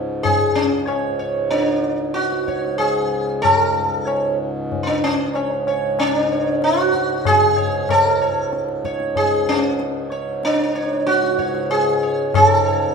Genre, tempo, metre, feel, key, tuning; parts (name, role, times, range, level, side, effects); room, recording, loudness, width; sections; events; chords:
indian classical, Hindustani; 94 BPM; 7/4; straight; A4 = 440 Hz
hand-pumped harmonium; drone; 0.0-12.9 s; C#2 to G#2; -26 LUFS; left 1 dB
sitar; melody; 0.2-12.9 s; C#4 to C#5; -17 LUFS; right 1 dB
tabla; percussion; 0.2-12.6 s; -25 LUFS; left 6 dB
wet recital hall reverb, RT60 1.6 s; minimal, uncompressed stereo recording; -16 LUFS; side -5 dB against mid
0.0-12.9 A section